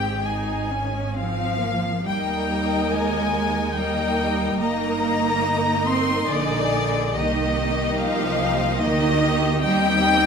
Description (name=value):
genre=classical, slow romantic movement for string orchestra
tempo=71 BPM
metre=3/4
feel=uneven beats, rubato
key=Eb major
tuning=A4 = 440 Hz
part: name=rich chamber violin section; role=melody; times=0.0-10.3 s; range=D5 to C6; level=-24 LUFS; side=left 4 dB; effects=none
part: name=bright symphonic violin section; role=second line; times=0.0-10.3 s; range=G4 to Eb5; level=-28 LUFS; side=left 3 dB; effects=none
part: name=rich studio viola section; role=accompaniment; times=0.0-10.3 s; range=Bb3 to Ab4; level=-26 LUFS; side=right 2 dB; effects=none
part: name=rich chamber double bass section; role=bass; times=0.0-10.3 s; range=G1 to Eb2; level=-28 LUFS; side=right 4 dB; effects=none
part: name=rich studio cello section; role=bass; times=0.0-10.3 s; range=Ab2 to C4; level=-26 LUFS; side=right 2 dB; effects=none
room=wet scoring stage reverb, RT60 1.6 s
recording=none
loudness=-20 LUFS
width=side -6 dB against mid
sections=0.0-2.1 A section; 2.1-10.3 B section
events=none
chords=0.0 Ab; 2.1 Eb; 4.6 Eb/G; 7.1 Cm7; 9.6 Cm/Eb